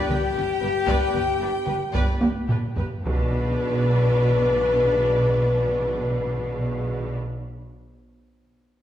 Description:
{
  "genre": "cinematic, epic orchestral film score",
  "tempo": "70-79 BPM (dotted quarters)",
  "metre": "12/8",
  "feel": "straight",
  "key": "B minor",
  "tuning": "A4 = 436 Hz",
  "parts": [
    { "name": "warm symphonic violin section", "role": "melody", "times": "0.0-7.1 s", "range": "G4 to D5", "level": "-37 LUFS", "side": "left 1 dB", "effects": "none" },
    { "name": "warm symphonic violin section", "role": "second line", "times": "0.0-7.1 s", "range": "D4 to G5", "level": "-33 LUFS", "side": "left 2 dB", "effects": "none" },
    { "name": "rich symphonic viola section", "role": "accompaniment", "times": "0.0-7.2 s", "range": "D4 to B4", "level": "-34 LUFS", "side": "right 1 dB", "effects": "none" },
    { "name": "warm French horn section", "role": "sustained chords", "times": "0.0-7.1 s", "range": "G4 to B4", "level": "-24 LUFS", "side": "left 3 dB", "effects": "none" },
    { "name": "rich symphonic cello section", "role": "bass", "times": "0.1-7.1 s", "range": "G2 to B2", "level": "-29 LUFS", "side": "right 2 dB", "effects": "none" },
    { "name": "warm chamber double bass section", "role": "bass", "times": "0.1-7.1 s", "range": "G1 to B1", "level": "-29 LUFS", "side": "right 1 dB", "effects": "none" },
    { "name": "taiko ensemble", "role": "drums", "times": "0.1-4.2 s", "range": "none", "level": "-25 LUFS", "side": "right 1 dB", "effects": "none" },
    { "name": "timpani", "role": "percussion", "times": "3.0-7.1 s", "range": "B2", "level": "-30 LUFS", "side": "equal", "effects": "none" }
  ],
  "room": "wet recital hall reverb, RT60 1.6 s",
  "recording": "heard from further back in the room",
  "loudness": "-20 LUFS",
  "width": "side -11 dB against mid",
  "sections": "0.0-3.0 A section; 3.0-6.5 B section",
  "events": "slowing down 0.0-3.0; drum fill 2.2-3.0",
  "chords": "0.0 G; 3.0 Bm"
}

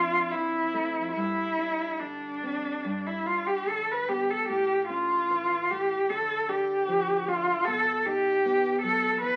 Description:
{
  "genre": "romantic duo for cello and classical guitar",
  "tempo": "70-79 BPM",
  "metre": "4/4",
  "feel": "rubato",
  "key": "unclear",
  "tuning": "A4 = 440 Hz",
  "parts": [
    { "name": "rich cello", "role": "melody", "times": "0.0-9.4 s", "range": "D4 to B4", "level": "-28 LUFS", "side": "equal", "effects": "none" },
    { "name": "nylon-string guitar", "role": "accompaniment", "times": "0.0-9.4 s", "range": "E2 to D#4", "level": "-39 LUFS", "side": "equal", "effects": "none" }
  ],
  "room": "moderate large studio reverb, RT60 1.1 s",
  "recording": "very old 78 rpm record, vinyl crackle",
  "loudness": "-27 LUFS",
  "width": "mono",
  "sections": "0.0-9.4 A section",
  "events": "none",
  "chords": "0.0 Dm/F; 1.2 Gsus4; 2.8 G; 4.5 A; 6.1 Dm; 7.7 B"
}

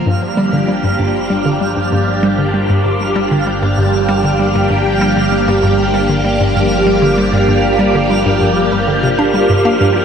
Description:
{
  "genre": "ambient, sequencer-driven space music",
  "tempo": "97 BPM",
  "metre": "4/4",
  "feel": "straight",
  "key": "unclear",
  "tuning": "A4 = 440 Hz",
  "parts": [
    { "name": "phased string machine", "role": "sustained chords", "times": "0.0-10.0 s", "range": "F3 to A4", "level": "-14 LUFS", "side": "equal", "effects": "ensemble chorus, phaser" },
    { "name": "fat analog bass", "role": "bass", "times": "0.0-10.0 s", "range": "G1", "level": "-22 LUFS", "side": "equal", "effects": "none" },
    { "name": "twinkling granular texture", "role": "texture", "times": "0.0-10.0 s", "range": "F5", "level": "-22 LUFS", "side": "right 3 dB", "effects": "built-in reverb" },
    { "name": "hollow square pluck", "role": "riff", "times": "0.1-10.0 s", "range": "G2 to D4", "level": "-16 LUFS", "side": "equal", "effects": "chorus, ping-pong delay" }
  ],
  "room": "wet lush hall reverb, RT60 2.5 s",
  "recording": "none",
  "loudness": "-11 LUFS",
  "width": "side -7 dB against mid",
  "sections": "0.0-10.0 A section",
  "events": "none",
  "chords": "0.1 Gm7"
}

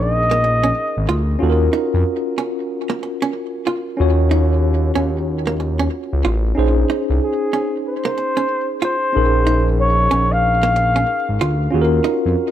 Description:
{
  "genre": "R&B, neo-soul",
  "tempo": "93 BPM",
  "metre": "4/4",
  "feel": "swing 60% on 16ths",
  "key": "Bb minor",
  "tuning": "A4 = 440 Hz",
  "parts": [
    { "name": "breathy flugelhorn", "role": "melody", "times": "0.0-1.1, 7.2-11.4 s", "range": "Ab4 to F5", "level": "-19 LUFS", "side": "left 1 dB", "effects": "tape echo" },
    { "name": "tine electric piano", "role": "accompaniment", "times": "0.0-12.5 s", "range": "Db4 to Db5", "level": "-21 LUFS", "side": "left 1 dB", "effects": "medium stereo tremolo" },
    { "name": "smooth synth bass", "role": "bass", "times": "0.0-12.4 s", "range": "Ab1 to F2", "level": "-17 LUFS", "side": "equal", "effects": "none" },
    { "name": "archtop guitar, miked and amplified", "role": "second line", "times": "0.3-12.2 s", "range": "Bb3 to F4", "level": "-24 LUFS", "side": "right 5 dB", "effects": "tape echo" }
  ],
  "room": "light reverb, digital ambience",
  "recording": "none",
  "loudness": "-16 LUFS",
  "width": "side -11 dB against mid",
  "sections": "0.0-12.5 A section",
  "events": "none",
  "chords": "0.0 Bbm11; 1.4 Ebm9; 6.6 Bbm11; 11.7 Ebm9"
}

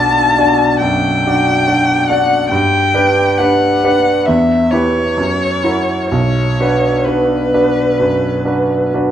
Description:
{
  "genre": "classical, romantic duo for violin and grand piano",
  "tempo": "62-71 BPM",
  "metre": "4/4",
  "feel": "rubato",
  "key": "B minor",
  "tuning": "A4 = 439 Hz",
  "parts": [
    { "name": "rich violin", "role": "melody", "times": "0.0-8.9 s", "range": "B4 to A5", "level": "-15 LUFS", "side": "left 2 dB", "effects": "none" },
    { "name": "bright baby grand piano", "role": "accompaniment", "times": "0.0-9.1 s", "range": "B1 to D5", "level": "-13 LUFS", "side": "right 1 dB", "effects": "none" }
  ],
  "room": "wet recital hall reverb, RT60 1.5 s",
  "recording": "dark, warm production, nothing above 10.3 kHz",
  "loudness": "-11 LUFS",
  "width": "side -10 dB against mid",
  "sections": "0.0-9.1 A section",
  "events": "none",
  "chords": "0.0 Bm; 2.5 G; 4.3 Em; 5.2 F#7; 6.1 Bm"
}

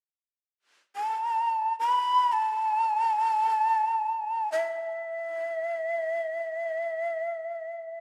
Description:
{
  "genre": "japanese traditional, Japanese chamber music",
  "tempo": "free time",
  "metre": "none",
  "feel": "none",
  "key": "unclear",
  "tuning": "A4 = 440 Hz",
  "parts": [
    { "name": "breathy shakuhachi", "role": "solo", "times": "1.0-8.0 s", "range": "E5 to B5", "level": "-28 LUFS", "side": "equal", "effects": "none" }
  ],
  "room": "moderate concert hall reverb, RT60 1.9 s",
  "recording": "dark, warm production",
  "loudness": "-28 LUFS",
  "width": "mono",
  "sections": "0.0-8.0 A section",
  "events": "none",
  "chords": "none"
}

